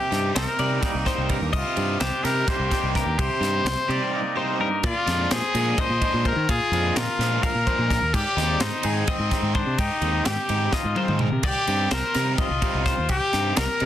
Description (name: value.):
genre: math rock and midwest emo.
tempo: 254 BPM (eighths).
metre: 7/8.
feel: straight.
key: C minor.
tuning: A4 = 440 Hz.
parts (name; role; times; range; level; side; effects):
clear trumpet; melody; 0.0-13.9 s; C4 to C5; -26 LUFS; left 2 dB; plate reverb.
twangy electric guitar; accompaniment; 0.0-6.5 s; G2 to Bb4; -32 LUFS; right 9 dB; plate reverb.
twelve-string electric guitar; arpeggios; 0.0-13.9 s; F4 to F5; -29 LUFS; left 5 dB; plate reverb, digital delay.
crunchy overdriven guitar; riff; 0.1-13.9 s; Bb2 to G4; -30 LUFS; right 2 dB; none.
growling fingered electric bass; bass; 0.1-13.9 s; C2 to Eb3; -26 LUFS; equal; overdrive.
crisp fusion drum kit; drums; 0.1-13.9 s; crash cymbal, kick drum, ride cymbal, snare drum, toms; -27 LUFS; equal; none.
room: light reverb.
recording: dense, heavily limited modern master.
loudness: -20 LUFS.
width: side -11 dB against mid.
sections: 0.0-4.8 A section; 4.8-13.9 B section.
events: drum fill 10.7-11.4.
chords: 0.0 Cm9; 4.8 Bb9sus4; 8.1 Abmaj7; 11.4 Cm9.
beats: 0.12 0.36 0.59 0.83 1.06 1.30 | 1.53 1.77 2.01 2.24 2.48 2.71 2.95 | 3.19 3.42 3.66 3.89 4.13 4.36 4.60 | 4.83 5.07 5.31 5.54 5.78 6.01 6.25 | 6.48 6.72 6.96 7.19 7.43 7.66 7.90 | 8.13 8.37 8.61 8.84 9.08 9.31 9.55 | 9.79 10.02 10.26 10.50 10.73 10.97 11.21 | 11.44 11.68 11.91 12.15 12.39 12.62 12.86 | 13.10 13.33 13.57 13.81.